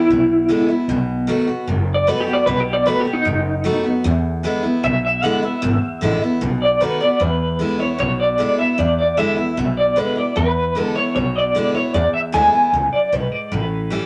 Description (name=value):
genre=rockabilly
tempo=152 BPM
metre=4/4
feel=straight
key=E mixolydian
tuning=A4 = 440 Hz
part: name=electric guitar through a small old amp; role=melody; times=0.0-14.1 s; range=D#4 to G#5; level=-20 LUFS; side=equal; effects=tremolo
part: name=picked steel-string acoustic guitar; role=accompaniment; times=0.0-14.1 s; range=E2 to F#4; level=-23 LUFS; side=equal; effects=none
part: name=upright bass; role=bass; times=0.1-13.9 s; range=F#1 to E2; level=-25 LUFS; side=equal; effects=none
room=moderate studio reverb, RT60 0.8 s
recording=none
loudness=-18 LUFS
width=mono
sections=0.0-7.2 A section; 7.2-14.1 B section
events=clean electric guitar solo 0.0-7.2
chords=0.0 E7; 0.9 B7; 4.0 E7; 6.4 B7; 7.2 E7; 13.5 A7